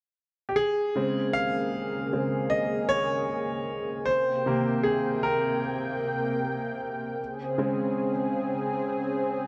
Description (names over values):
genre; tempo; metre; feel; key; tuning
R&B; 77 BPM; 4/4; straight; Bb dorian; A4 = 440 Hz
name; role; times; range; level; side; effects
clear grand piano; accompaniment; 0.5-9.5 s; C3 to F5; -29 LUFS; equal; none
lush unison pad; sustained chords; 1.0-9.5 s; C3 to G5; -32 LUFS; equal; chorus
room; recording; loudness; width
moderate lush hall reverb, RT60 2.9 s; none; -28 LUFS; mono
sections
1.0-9.5 A section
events
grand piano solo 1.0-9.5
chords
0.0 N.C.; 1.0 Bbm9; 4.1 Abmaj9/C; 7.2 Abadd11/Db